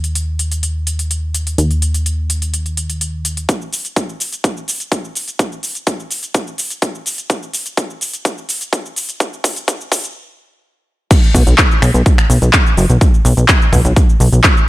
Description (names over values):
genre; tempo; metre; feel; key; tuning
progressive house; 126 BPM; 4/4; straight; unclear; A4 = 441 Hz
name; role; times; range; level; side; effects
plucky analog bass; bass; 0.0-3.5, 11.3-14.4 s; F#1 to D#2; -14 LUFS; equal; sidechain pumping
big-room dance drum kit; drums; 0.0-14.7 s; crash cymbal, finger snaps, handclaps, hi-hat, shaker; -18 LUFS; equal; sidechain pumping on hats, sidechain pumping on perc, sidechain pumping on cymbals
electronic kick drum; drums; 3.5-14.5 s; none; -13 LUFS; equal; high-pass filter on kick, high-pass filter on room
room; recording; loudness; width
little or no reverb; high-pass filter; -13 LUFS; side -17 dB against mid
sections
0.0-3.5 A section; 3.5-11.1 B section; 11.1-14.7 C section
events
build-up 3.5-11.1; drum fill 7.3-10.2; stop 10.2-11.1; drop 11.1-14.7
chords
none